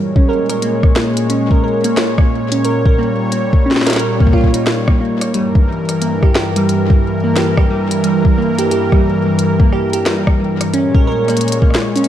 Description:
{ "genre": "IDM", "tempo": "89 BPM", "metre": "4/4", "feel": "swing 62% on 16ths", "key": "unclear", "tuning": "A4 = 436 Hz", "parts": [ { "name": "warm analog pad", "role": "sustained chords", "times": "0.0-12.1 s", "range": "G2 to Db5", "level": "-18 LUFS", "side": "left 2 dB", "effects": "chorus" }, { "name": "harp-like synth pluck", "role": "arpeggios", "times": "0.2-12.0 s", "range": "G3 to Bb4", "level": "-16 LUFS", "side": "right 2 dB", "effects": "chorus, ping-pong delay" }, { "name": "electronic kick drum", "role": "drums", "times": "0.2-11.7 s", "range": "none", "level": "-12 LUFS", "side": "equal", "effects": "studio reverb" }, { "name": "glitchy drum kit", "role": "drums", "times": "0.5-12.1 s", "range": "hi-hat, rim click, snare drum", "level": "-20 LUFS", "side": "left 1 dB", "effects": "studio reverb, ping-pong delay" } ], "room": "moderate lush hall reverb, RT60 2.5 s", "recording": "dark, warm production", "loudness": "-12 LUFS", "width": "side -11 dB against mid", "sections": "0.0-12.1 A section", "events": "none", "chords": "0.0 Bbm7; 5.3 Gm6; 10.7 Bbm7" }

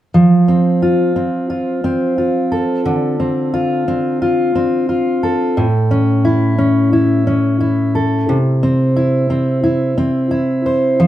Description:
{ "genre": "pop", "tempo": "88 BPM", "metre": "4/4", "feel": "swing 60% on 16ths", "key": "F major", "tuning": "A4 = 441 Hz", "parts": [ { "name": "fingerpicked steel-string acoustic guitar", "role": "accompaniment", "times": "0.1-11.1 s", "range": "A2 to C5", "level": "-13 LUFS", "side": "equal", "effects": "none" } ], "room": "wet studio ambience, RT60 0.5 s", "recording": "band playing live in one room", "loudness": "-13 LUFS", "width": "side -12 dB against mid", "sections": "0.1-11.0 A section", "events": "none", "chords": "0.1 F; 2.9 Dm7; 5.6 A; 8.3 C" }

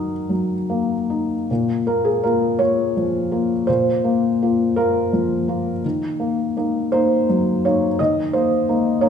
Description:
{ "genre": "neoclassical minimalist piano", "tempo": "55 BPM (dotted quarters)", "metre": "6/8", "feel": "uneven beats, rubato", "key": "Bb minor", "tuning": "A4 = 439 Hz", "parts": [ { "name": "felt-muted upright piano", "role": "solo", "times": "0.0-9.1 s", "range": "Bb2 to Eb6", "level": "-17 LUFS", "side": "left 1 dB", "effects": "none" } ], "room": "moderate recital hall reverb, RT60 1.4 s", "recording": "recorded in a church or concert hall", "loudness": "-17 LUFS", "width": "side -7 dB against mid", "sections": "0.0-1.5 A section; 1.5-9.1 B section", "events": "none", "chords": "0.0 Ebm; 1.5 Bbm; 5.8 Ebm7" }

